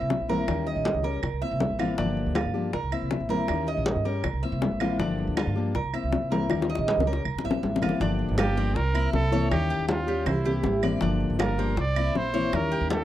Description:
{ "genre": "latin, Cuban son and guajira", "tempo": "159 BPM", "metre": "4/4", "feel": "straight", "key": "unclear", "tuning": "A4 = 445 Hz", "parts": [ { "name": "fingerpicked steel-string acoustic guitar", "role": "accompaniment", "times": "0.0-13.0 s", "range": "D3 to G4", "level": "-29 LUFS", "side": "left 5 dB", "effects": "none" }, { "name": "Cuban tres", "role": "arpeggios", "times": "0.0-13.0 s", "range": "C4 to E5", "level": "-32 LUFS", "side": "right 5 dB", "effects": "none" }, { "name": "upright bass", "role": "bass", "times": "0.0-13.0 s", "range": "G1 to G2", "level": "-29 LUFS", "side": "right 1 dB", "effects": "none" }, { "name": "bongos", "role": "percussion", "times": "0.1-13.0 s", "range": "none", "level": "-31 LUFS", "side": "left 5 dB", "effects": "none" }, { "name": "congas", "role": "percussion", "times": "0.1-13.0 s", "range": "none", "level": "-32 LUFS", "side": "equal", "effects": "none" }, { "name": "claves", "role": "percussion", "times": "0.5-12.7 s", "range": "none", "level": "-38 LUFS", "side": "right 17 dB", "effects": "none" }, { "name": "breathy trumpet", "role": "melody", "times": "8.4-13.0 s", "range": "E4 to D5", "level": "-30 LUFS", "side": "right 2 dB", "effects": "none" } ], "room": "little or no reverb", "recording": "dry, close 1970s-style studio recording", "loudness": "-24 LUFS", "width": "side -12 dB against mid", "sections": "0.0-8.0 A section; 8.0-13.0 B section", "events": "drum fill 6.5-8.0", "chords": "0.5 Eb7; 1.2 C7; 2.0 Gm7; 2.7 C7; 3.5 Eb7; 4.2 C7; 5.0 Gm7; 5.7 C7; 6.5 Eb7; 7.3 C7; 8.0 Gm7; 8.8 C7; 9.5 Eb7; 10.3 C7; 11.0 Gm7; 11.8 C7; 12.5 Eb7", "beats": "0.10 | 0.48 0.85 1.23 1.61 | 1.98 2.36 2.73 3.11 | 3.49 3.86 4.24 4.62 | 4.99 5.37 5.75 6.12 | 6.50 6.88 7.25 7.63 | 8.01 8.38 8.76 9.14 | 9.51 9.89 10.27 10.64 | 11.02 11.40 11.77 12.15 | 12.53 12.90" }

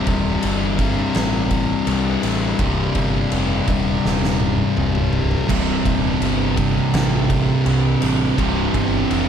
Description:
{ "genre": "stoner and doom metal", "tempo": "83 BPM", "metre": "4/4", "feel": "straight", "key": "unclear", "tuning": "A4 = 440 Hz", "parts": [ { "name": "high-gain distorted guitar", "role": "riff", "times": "0.0-9.3 s", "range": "C2 to C3", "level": "-25 LUFS", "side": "right 3 dB", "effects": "distortion" }, { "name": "thick fuzz guitar", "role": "riff", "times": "0.0-9.3 s", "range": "C2 to C3", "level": "-21 LUFS", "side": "left 5 dB", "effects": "distortion" }, { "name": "growling picked electric bass", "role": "bass", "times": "0.1-9.3 s", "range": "C1 to C2", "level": "-24 LUFS", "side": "right 1 dB", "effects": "overdrive" }, { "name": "oversized low-tuned drum kit", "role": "drums", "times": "0.1-9.3 s", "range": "crash cymbal, kick drum, ride cymbal, snare drum, toms", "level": "-24 LUFS", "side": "equal", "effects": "none" }, { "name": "thick fuzz guitar", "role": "riff", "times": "5.5-9.3 s", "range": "C2 to C3", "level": "-22 LUFS", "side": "right 10 dB", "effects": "distortion" } ], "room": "small room ambience", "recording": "dark, warm production", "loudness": "-16 LUFS", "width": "side -8 dB against mid", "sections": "0.0-9.3 A section", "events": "drum fill 4.0-5.5", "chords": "0.0 Cm", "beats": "0.43 1.15 1.88 | 2.60 3.32 4.04 4.77 | 5.49 6.21 6.94 7.66 | 8.38 9.11" }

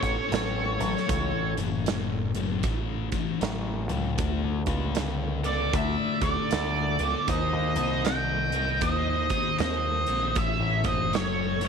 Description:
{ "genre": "blues rock power trio and southern rock", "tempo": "78 BPM", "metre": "4/4", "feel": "swing 62% on 8ths", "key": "unclear", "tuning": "A4 = 440 Hz", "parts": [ { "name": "octave-fuzz lead guitar", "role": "melody", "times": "0.0-11.7 s", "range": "C#5 to G5", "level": "-28 LUFS", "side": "right 1 dB", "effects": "wah, distortion" }, { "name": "bluesy overdriven lead guitar", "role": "second line", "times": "0.0-11.7 s", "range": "A4 to D#5", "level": "-36 LUFS", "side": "right 15 dB", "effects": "distortion" }, { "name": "thick fuzz guitar", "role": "riff", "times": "0.0-11.7 s", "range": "A2 to C4", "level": "-31 LUFS", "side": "left 12 dB", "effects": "distortion" }, { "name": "growling picked electric bass", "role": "bass", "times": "0.0-11.7 s", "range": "F#1 to D#2", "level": "-30 LUFS", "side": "equal", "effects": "overdrive" }, { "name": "huge arena drum kit", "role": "drums", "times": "0.0-11.7 s", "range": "hi-hat, kick drum, snare drum", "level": "-32 LUFS", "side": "right 4 dB", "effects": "none" } ], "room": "studio reverb", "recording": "1960s-style stereo with parts hard left and right", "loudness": "-24 LUFS", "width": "side -6 dB against mid", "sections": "0.0-11.7 A section", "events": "none", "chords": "0.0 A; 4.2 D5; 7.3 D#5; 10.4 A", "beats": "0.32 | 1.10 1.87 2.65 3.42 | 4.20 4.97 5.74 6.51 | 7.29 8.06 8.83 9.60 | 10.38 11.15" }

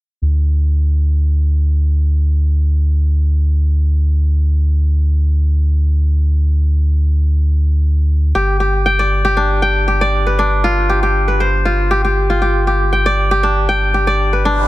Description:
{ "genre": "house", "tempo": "118 BPM", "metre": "4/4", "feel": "straight", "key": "unclear", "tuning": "A4 = 440 Hz", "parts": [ { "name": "warm sub bass", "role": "bass", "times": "0.2-14.7 s", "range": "G1 to D2", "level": "-14 LUFS", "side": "equal", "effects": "none" }, { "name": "kora", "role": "arpeggios", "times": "8.3-14.7 s", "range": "D4 to G5", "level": "-14 LUFS", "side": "left 1 dB", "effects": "dub echo" }, { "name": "noise sweep", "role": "sound effects", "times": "14.5-14.7 s", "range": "none", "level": "-21 LUFS", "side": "right 3 dB", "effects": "none" } ], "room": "small room ambience", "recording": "dense, heavily limited modern master", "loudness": "-12 LUFS", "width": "side -17 dB against mid", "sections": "0.2-14.7 A section", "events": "noise sweep 14.5", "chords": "0.2 N.C.; 8.4 G7sus4", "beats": "| 0.22 0.72 1.23 1.74 | 2.25 2.76 3.27 3.77 | 4.28 4.79 5.30 5.81 | 6.32 6.83 7.33 7.84 | 8.35 8.86 9.37 9.88 | 10.39 10.89 11.40 11.91 | 12.42 12.93 13.44 13.95 | 14.45" }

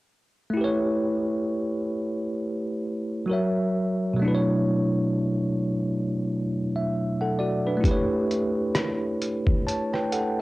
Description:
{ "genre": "lo-fi hip hop", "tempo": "66 BPM", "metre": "4/4", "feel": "swing 60% on 16ths", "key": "unclear", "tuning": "A4 = 441 Hz", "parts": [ { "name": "bell-like tine electric piano", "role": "accompaniment", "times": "0.5-10.4 s", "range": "B2 to A5", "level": "-24 LUFS", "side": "equal", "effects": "fast stereo tremolo, low-pass filter, cassette tape" }, { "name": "trip hop sampler-style drum kit", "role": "drums", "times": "7.8-10.4 s", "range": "hi-hat, kick drum, rim click", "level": "-25 LUFS", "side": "equal", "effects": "overdrive" } ], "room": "wet studio reverb, RT60 0.5 s", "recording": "home recording on cassette", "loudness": "-23 LUFS", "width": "side -19 dB against mid", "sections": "0.6-10.4 A section", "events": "none", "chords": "0.6 A9; 3.3 F#7; 4.2 Bm11; 7.8 A9", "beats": "| 0.57 1.48 2.38 3.29 | 4.20 5.11 6.02 6.93 | 7.84 8.75 9.66" }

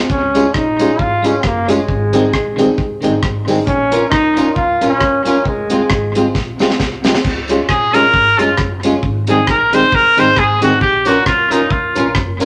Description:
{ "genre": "ska", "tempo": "134 BPM", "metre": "4/4", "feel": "swing 56% on 8ths", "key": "Db major", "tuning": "A4 = 440 Hz", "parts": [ { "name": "dark upright piano", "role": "stabs", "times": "0.0-12.4 s", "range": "C4 to Bb4", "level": "-21 LUFS", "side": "equal", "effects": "none" }, { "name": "upright bass", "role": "bass", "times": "0.0-12.4 s", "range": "F1 to Db2", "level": "-27 LUFS", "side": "equal", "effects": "none" }, { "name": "bright trombone", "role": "melody", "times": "0.1-6.4 s", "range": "Ab3 to F4", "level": "-18 LUFS", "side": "equal", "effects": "none" }, { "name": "deep reggae drum kit", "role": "drums", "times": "0.1-12.4 s", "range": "crash cymbal, hi-hat, kick drum, rim click, snare drum", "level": "-21 LUFS", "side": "equal", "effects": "analog delay" }, { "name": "clean electric guitar", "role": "accompaniment", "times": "0.3-12.4 s", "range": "Eb3 to F4", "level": "-22 LUFS", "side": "equal", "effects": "none" }, { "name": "tambourine", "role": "percussion", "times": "0.3-12.4 s", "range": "none", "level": "-38 LUFS", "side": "equal", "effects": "none" }, { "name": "bright trumpet", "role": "melody", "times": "7.7-12.2 s", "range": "Eb4 to C5", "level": "-14 LUFS", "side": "equal", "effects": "none" } ], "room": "wet large studio reverb, RT60 0.9 s", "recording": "none", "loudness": "-14 LUFS", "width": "mono", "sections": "0.0-7.2 A section; 7.2-12.4 B section", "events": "drum fill 6.4-7.2; trumpet solo 7.2-12.4", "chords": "0.1 Db; 1.9 Ab; 3.7 Bbm; 5.5 Fm; 7.2 Db; 9.0 Ab; 10.8 Bbm", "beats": "| 0.10 0.55 1.00 1.44 | 1.89 2.34 2.78 3.23 | 3.68 4.12 4.57 5.02 | 5.46 5.91 6.35 6.80 | 7.25 7.69 8.14 8.58 | 9.03 9.48 9.92 10.37 | 10.82 11.26 11.71 12.16" }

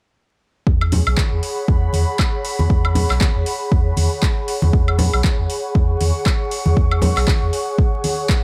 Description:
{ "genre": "deep house", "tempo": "118 BPM", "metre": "4/4", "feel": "swing 58% on 16ths", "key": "E major", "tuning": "A4 = 442 Hz", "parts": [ { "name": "warm sub bass", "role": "bass", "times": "0.7-7.5 s", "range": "B1 to E2", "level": "-21 LUFS", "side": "equal", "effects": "sidechain pumping" }, { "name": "electronic kick drum", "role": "drums", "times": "0.7-8.4 s", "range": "none", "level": "-20 LUFS", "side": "equal", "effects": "overdrive, small room ambience" }, { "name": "airy breathy pad", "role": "texture", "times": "0.9-8.4 s", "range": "G#4 to C#6", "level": "-27 LUFS", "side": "equal", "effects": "chorus, sidechain pumping" }, { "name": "deep house drum kit", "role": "drums", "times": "0.8-8.4 s", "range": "handclaps, hi-hat, woodblock", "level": "-27 LUFS", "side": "equal", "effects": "overdrive, small room ambience" }, { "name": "congas", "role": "percussion", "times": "0.9-8.2 s", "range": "none", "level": "-26 LUFS", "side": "equal", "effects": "none" } ], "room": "light reverb, digital ambience", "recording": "vinyl crackle", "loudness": "-18 LUFS", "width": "mono", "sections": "0.7-8.4 A section", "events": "none", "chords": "0.7 Eadd9", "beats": "| 0.67 1.18 1.68 2.19 | 2.70 3.21 3.72 4.23 | 4.73 5.24 5.75 6.26 | 6.77 7.28 7.79 8.29" }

